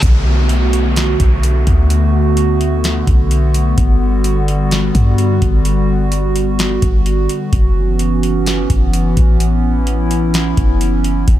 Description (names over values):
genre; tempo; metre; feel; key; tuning
hip hop, atmospheric cloud-rap; 128 BPM; 4/4; half-time; B minor; A4 = 442 Hz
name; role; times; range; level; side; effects
hollow soft pad; sustained chords; 0.0-11.4 s; D3 to F#4; -17 LUFS; equal; chorus, sidechain pumping
clean 808-style bass; bass; 0.0-11.4 s; E1 to G2; -15 LUFS; equal; none
booming analog drum machine; drums; 0.0-11.4 s; hi-hat, kick drum, snare drum; -16 LUFS; equal; none
reverse cymbal and downlifter; sound effects; 0.0-3.8 s; none; -25 LUFS; equal; none
room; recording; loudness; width
little or no reverb; low-pass filter; -12 LUFS; side -13 dB against mid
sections
0.0-11.4 A section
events
none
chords
0.0 Bm7; 3.8 Gmaj7; 7.5 F#7sus4